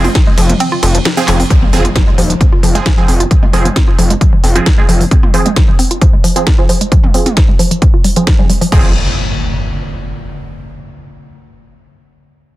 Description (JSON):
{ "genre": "driving peak-time techno", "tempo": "133 BPM", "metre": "4/4", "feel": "straight", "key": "F minor", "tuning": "A4 = 440 Hz", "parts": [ { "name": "woody wave-folded pluck", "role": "riff", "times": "0.0-8.9 s", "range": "F3 to F4", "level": "-17 LUFS", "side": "left 1 dB", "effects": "chorus, sidechain pumping, dub echo" }, { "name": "supersaw stab", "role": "stabs", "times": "0.0-8.9 s", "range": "F3 to Ab4", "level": "-19 LUFS", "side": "right 4 dB", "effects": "phaser, sidechain pumping, low-pass filter, digital delay" }, { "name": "gritty driven synth bass", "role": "bass", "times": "0.0-5.0, 8.7-8.9 s", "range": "Eb1 to F1", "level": "-14 LUFS", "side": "equal", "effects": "sidechain pumping" }, { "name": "deep dark ambient pad", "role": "drone", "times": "0.1-1.6 s", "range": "F3 to C4", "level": "-26 LUFS", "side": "right 1 dB", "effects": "none" }, { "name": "techno drum kit", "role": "drums", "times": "0.0-8.8 s", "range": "crash cymbal, handclaps, hi-hat, ride cymbal, snare drum, toms", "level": "-18 LUFS", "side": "right 1 dB", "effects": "none" }, { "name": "electronic kick drum", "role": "drums", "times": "0.2-8.8 s", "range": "none", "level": "-10 LUFS", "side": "equal", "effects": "none" }, { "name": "impact", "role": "sound effects", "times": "1.5-3.3, 8.7-10.5 s", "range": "none", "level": "-20 LUFS", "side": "equal", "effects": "none" } ], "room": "digital ambience", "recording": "dense, heavily limited modern master", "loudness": "-8 LUFS", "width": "side -16 dB against mid", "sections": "0.0-1.5 A section; 1.5-8.7 B section; 8.7-10.5 C section", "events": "drop 0.0-1.5; kick drops out 0.6-1.5; drum fill 1.3; impact 1.5-3.3; filter sweep on synth arpeggio sound 1.5-8.7; filter sweep on supersaw synth 1.5-8.7", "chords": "0.0 Fm", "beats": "0.15 0.60 1.05 | 1.50 1.96 2.41 2.86 | 3.31 3.76 4.21 4.66 | 5.11 5.56 6.02 6.47 | 6.92 7.37 7.82 8.27 | 8.72 9.17 9.62 10.08" }